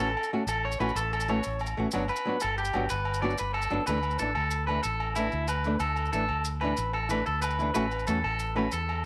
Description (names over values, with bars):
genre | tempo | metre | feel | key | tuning
highlife guitar band | 124 BPM (dotted quarters) | 12/8 | straight | D major | A4 = 440 Hz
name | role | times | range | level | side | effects
flamenco guitar | accompaniment | 0.0-8.7 s | E3 to F#4 | -33 LUFS | equal | none
electric guitar at the edge of break-up | arpeggios | 0.0-9.0 s | E4 to D5 | -32 LUFS | equal | tape echo
fingered electric bass | bass | 0.0-9.1 s | G1 to E2 | -35 LUFS | equal | none
agogo bells | percussion | 0.0-9.1 s | none | -40 LUFS | equal | none
maracas | percussion | 0.2-8.8 s | none | -43 LUFS | equal | none
room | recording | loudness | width
moderate spring reverb, RT60 1.9 s, small room ambience | none | -29 LUFS | mono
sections
0.0-3.9 A section; 3.9-9.1 B section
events
none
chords
0.0 A6; 1.9 Gmaj7; 3.9 Dsus2; 7.8 A6